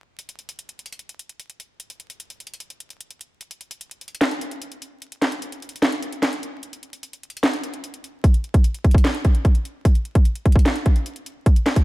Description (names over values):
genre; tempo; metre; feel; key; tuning
hip hop; 149 BPM; 4/4; half-time; none; none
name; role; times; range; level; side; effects
trap drum kit; drums; 0.2-11.8 s; handclaps, hi-hat, kick drum, snare drum; -18 LUFS; equal; none
room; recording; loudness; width
light reverb; vinyl crackle; -18 LUFS; side -19 dB against mid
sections
0.2-11.8 A section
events
kick muted 0.2-6.6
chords
none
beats
| 0.19 0.59 0.99 1.40 | 1.80 2.20 2.60 3.00 | 3.41 3.81 4.21 4.62 | 5.02 5.42 5.82 6.23 | 6.63 7.03 7.43 7.84 | 8.24 8.64 9.05 9.45 | 9.85 10.25 10.66 11.06 | 11.46